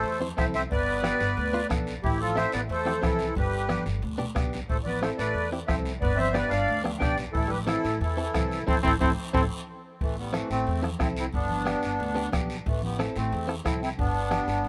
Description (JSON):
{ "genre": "latin, cumbia", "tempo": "181 BPM", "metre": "4/4", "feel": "straight", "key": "A minor", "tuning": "A4 = 437 Hz", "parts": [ { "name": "accordion", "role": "melody", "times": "0.0-14.7 s", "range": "E3 to G5", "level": "-31 LUFS", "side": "equal", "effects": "light tremolo tuning" }, { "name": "bright trombone", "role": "second line", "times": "0.0-9.4 s", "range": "E3 to D4", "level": "-36 LUFS", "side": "equal", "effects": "none" }, { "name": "upright bass", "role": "bass", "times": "0.0-14.7 s", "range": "G1 to E2", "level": "-34 LUFS", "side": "equal", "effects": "none" }, { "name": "guiro", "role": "percussion", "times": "0.0-14.7 s", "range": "none", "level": "-44 LUFS", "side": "equal", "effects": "none" }, { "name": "congas", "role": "percussion", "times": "0.1-14.7 s", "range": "none", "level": "-38 LUFS", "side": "equal", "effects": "none" }, { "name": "direct-recorded clean electric guitar", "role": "accompaniment", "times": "0.2-14.5 s", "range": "B3 to C5", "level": "-36 LUFS", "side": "equal", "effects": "none" }, { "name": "bombo", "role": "percussion", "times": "0.4-14.5 s", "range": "none", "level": "-32 LUFS", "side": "equal", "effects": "none" } ], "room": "light reverb", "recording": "none", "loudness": "-27 LUFS", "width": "mono", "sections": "0.0-10.0 A section; 10.0-14.7 A section", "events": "drum fill 3.7-4.7; band accent 8.7-10.0", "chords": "0.0 Am; 0.7 G; 2.0 Am; 3.4 G; 4.7 Am; 6.0 G; 7.3 Am; 11.3 G; 12.7 Am; 14.0 G" }